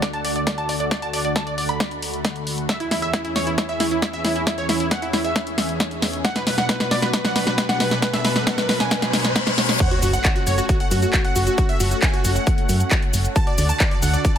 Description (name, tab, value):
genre	uplifting trance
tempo	135 BPM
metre	4/4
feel	straight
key	F# minor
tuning	A4 = 440 Hz
part	supersaw stab	melody	0.0-14.4 s	E4 to B5	-26 LUFS	right 1 dB	cassette tape, sidechain pumping, low-pass filter, ping-pong delay
part	bright grand piano	second line	0.0-14.4 s	E4 to B5	-30 LUFS	right 1 dB	sidechain pumping, low-pass filter, ping-pong delay
part	analog string pad	sustained chords	0.0-14.4 s	D2 to B4	-27 LUFS	left 1 dB	ensemble chorus, sidechain pumping
part	electronic kick drum	drums	0.0-14.3 s	none	-20 LUFS	equal	overdrive, high-pass filter on kick
part	punchy analog drum machine	drums	0.0-14.4 s	crash cymbal, handclaps, hi-hat, shaker, snare drum	-23 LUFS	equal	sidechain pumping on hats, sidechain pumping on cymbals, sidechain pumping on perc
part	riser, reverse cymbal and sub drop	sound effects	5.0-11.6 s	none	-29 LUFS	left 1 dB	none
part	solid FM bass	bass	10.0-14.2 s	F#1 to F#2	-20 LUFS	equal	sidechain pumping
room	light reverb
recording	none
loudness	-18 LUFS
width	side -9 dB against mid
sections	0.0-9.8 A section; 9.8-14.4 B section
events	build-up 0.0-9.8; drum fill 0.0-9.8; riser 5.0-9.8; reverse cymbal 8.9-9.8; drop 9.8-14.4; impact 9.8-11.6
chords	0.0 D; 2.7 E6; 6.2 Bm; 9.8 F#m; 13.4 D